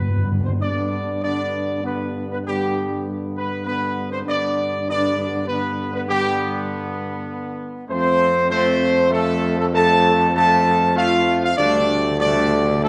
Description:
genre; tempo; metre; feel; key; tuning
classical; 98 BPM; 3/4; straight; G mixolydian; A4 = 440 Hz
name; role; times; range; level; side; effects
dark trumpet section; melody; 0.0-12.9 s; G4 to A5; -22 LUFS; equal; none
mellow French horn section; sustained chords; 0.0-12.9 s; G3 to A4; -28 LUFS; equal; none
timpani; percussion; 0.0-0.5, 11.6-12.9 s; G2 to D3; -27 LUFS; equal; none
clear trombone section; sustained chords; 0.6-12.9 s; D3 to B3; -30 LUFS; equal; none
warm tuba; bass; 0.6-12.9 s; D2 to G2; -27 LUFS; equal; none
room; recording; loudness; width
wet scoring stage reverb, RT60 1.6 s; none; -20 LUFS; mono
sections
0.6-12.9 A section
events
timpani fill 0.0-0.6, 11.6-12.9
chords
0.0 G; 7.9 F; 11.6 Dsus4

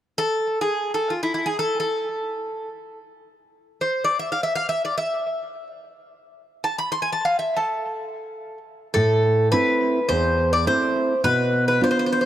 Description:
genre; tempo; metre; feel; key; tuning
greek folk; free time; none; none; A harmonic minor; A4 = 440 Hz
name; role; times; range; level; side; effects
Greek bouzouki; melody; 0.2-12.3 s; E4 to C6; -21 LUFS; equal; analog delay
nylon-string guitar; accompaniment; 9.0-12.3 s; E2 to F4; -21 LUFS; right 1 dB; analog delay
room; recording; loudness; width
moderate plate reverb, RT60 3.7 s; echo-heavy mix; -20 LUFS; side -12 dB against mid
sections
0.0-8.9 A section; 8.9-12.3 B section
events
none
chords
0.0 N.C.; 8.9 Am; 11.2 Bdim

